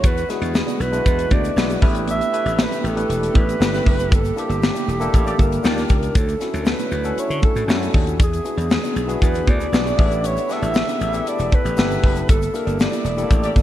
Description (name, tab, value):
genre	polished 1980s jazz-funk pop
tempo	118 BPM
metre	4/4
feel	straight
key	unclear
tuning	A4 = 440 Hz
part	breathy alto saxophone	melody	0.0-13.6 s	G4 to E5	-25 LUFS	right 1 dB	none
part	barky tine electric piano	accompaniment	0.0-13.6 s	G#3 to B4	-26 LUFS	left 3 dB	overdrive, lush chorus
part	warm studio string section	sustained chords	0.0-13.6 s	D3 to D5	-35 LUFS	left 1 dB	none
part	mellow electric guitar	riff	0.0-13.6 s	A3 to E5	-31 LUFS	right 8 dB	wide subtle chorus
part	slap bass	bass	0.0-13.6 s	E1 to D3	-24 LUFS	equal	none
part	crisp fusion drum kit	drums	0.0-13.6 s	hi-hat, kick drum, snare drum	-18 LUFS	equal	gated reverb
part	egg shaker	percussion	0.0-13.6 s	none	-43 LUFS	left 10 dB	none
part	mellow horn section	second line	5.3-5.8, 13.4-13.5 s	Bb3 to D5	-31 LUFS	right 1 dB	digital delay
room	light reverb, studio reverb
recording	bright 1980s-style digital production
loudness	-17 LUFS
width	side -12 dB against mid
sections	0.0-13.6 A section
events	band accent 4.1-6.2, 12.3-13.6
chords	0.0 E9; 1.8 A9sus4; 4.1 Gm6; 5.6 Ebmaj9; 6.2 Dmaj9; 8.2 E9; 10.0 A9sus4; 12.3 Gm6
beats	| 0.04 0.55 1.06 1.57 | 2.08 2.59 3.10 3.61 | 4.12 4.63 5.14 5.65 | 6.16 6.67 7.18 7.69 | 8.20 8.71 9.22 9.73 | 10.24 10.75 11.26 11.77 | 12.28 12.79 13.30